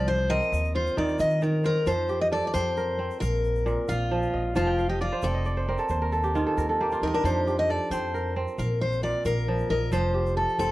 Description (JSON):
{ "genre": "west african traditional, West African string and xylophone music", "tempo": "89 BPM (dotted quarters)", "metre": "12/8", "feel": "straight", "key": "F mixolydian", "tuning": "A4 = 440 Hz", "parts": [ { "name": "picked steel-string acoustic guitar", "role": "melody", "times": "0.0-10.7 s", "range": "F4 to Eb5", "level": "-27 LUFS", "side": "left 2 dB", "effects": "none" }, { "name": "kora", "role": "arpeggios", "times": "0.0-10.7 s", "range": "Bb2 to A5", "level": "-28 LUFS", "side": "right 2 dB", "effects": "none" }, { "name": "upright bass", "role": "bass", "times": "0.0-10.7 s", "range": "F1 to Eb3", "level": "-29 LUFS", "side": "equal", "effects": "none" }, { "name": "egg shaker", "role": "percussion", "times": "0.1-10.7 s", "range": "none", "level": "-53 LUFS", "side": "left 6 dB", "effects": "none" } ], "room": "light reverb", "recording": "worn, warbling old tape, cassette tape, warbly pitch drift", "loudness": "-23 LUFS", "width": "side -17 dB against mid", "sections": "0.0-1.9 A section; 1.9-10.7 B section", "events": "steel-string acoustic guitar solo 0.0-1.9; kora fill 4.6-7.2", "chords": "0.0 F5; 0.5 Eb5; 1.9 F; 3.2 Bb5; 4.6 F; 5.9 Eb5; 7.2 F; 8.6 Bb5; 9.9 F" }